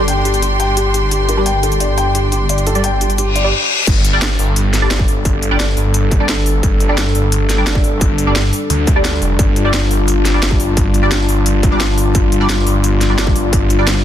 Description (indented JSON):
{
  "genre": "dark technical drum and bass",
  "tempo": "174 BPM",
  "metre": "4/4",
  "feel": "straight",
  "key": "unclear",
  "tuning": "A4 = 440 Hz",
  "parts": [
    { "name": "dark analog pad", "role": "sustained chords", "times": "0.0-14.0 s", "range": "G3 to A4", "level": "-20 LUFS", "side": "left 3 dB", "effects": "chorus, sidechain pumping" },
    { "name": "felt-muted upright piano", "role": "arpeggios", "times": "0.0-3.4 s", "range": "G4 to G5", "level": "-21 LUFS", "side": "left 2 dB", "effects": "sidechain pumping, dub echo" },
    { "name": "band-passed chord stab", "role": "stabs", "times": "0.0-13.9 s", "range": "G3 to D5", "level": "-22 LUFS", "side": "right 1 dB", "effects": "phaser, analog chorus, dub echo" },
    { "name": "snarling distorted saw bass", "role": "bass", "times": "0.0-14.0 s", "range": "F1 to D2", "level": "-16 LUFS", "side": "equal", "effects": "distortion, tube saturation" },
    { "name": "clear symphonic string section", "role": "texture", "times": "0.0-3.5 s", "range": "D4 to C6", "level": "-20 LUFS", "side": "right 1 dB", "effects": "sidechain pumping" },
    { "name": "drum and bass drum kit", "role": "drums", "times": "0.1-13.9 s", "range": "crash cymbal, hi-hat, snare drum", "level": "-20 LUFS", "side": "equal", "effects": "none" },
    { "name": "reverse cymbal", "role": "sound effects", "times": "3.3-3.9 s", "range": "none", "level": "-17 LUFS", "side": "left 5 dB", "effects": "none" },
    { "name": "electronic kick drum", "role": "drums", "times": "3.9-13.6 s", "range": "none", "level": "-15 LUFS", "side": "equal", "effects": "distortion" }
  ],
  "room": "light reverb",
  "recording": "dense, heavily limited modern master",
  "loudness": "-12 LUFS",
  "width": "side -10 dB against mid",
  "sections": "0.0-3.9 A section; 3.9-14.0 B section",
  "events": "filter sweep on felt piano 0.0-3.9; filter sweep on synth stab 0.0-3.9; reverse cymbal 3.3-3.9; drop 3.9-14.0",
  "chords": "0.0 G5"
}